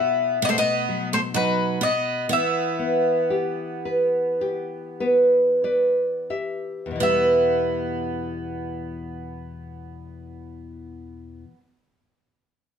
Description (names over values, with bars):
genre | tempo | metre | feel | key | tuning
fado-style ballad | 43-67 BPM | 4/4 | rubato | E minor | A4 = 441 Hz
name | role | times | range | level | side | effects
mandolin | melody | 0.0-11.6 s | B4 to E5 | -24 LUFS | left 4 dB | none
picked twelve-string acoustic guitar | second line | 0.0-11.6 s | F#3 to B3 | -29 LUFS | right 6 dB | none
nylon-string guitar | accompaniment | 0.0-11.7 s | E2 to E5 | -23 LUFS | right 1 dB | none
room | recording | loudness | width
wet studio reverb, RT60 0.6 s | none | -20 LUFS | side -8 dB against mid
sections
0.0-7.0 A section; 7.0-12.4 B section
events
slowing down 0.0-7.0; nylon-string guitar fill 4.4-7.0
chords
0.4 B; 2.3 Em; 7.0 Emadd9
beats
0.42 1.34 | 2.29 3.31 4.42 5.66 | 7.00 8.37 9.72 11.06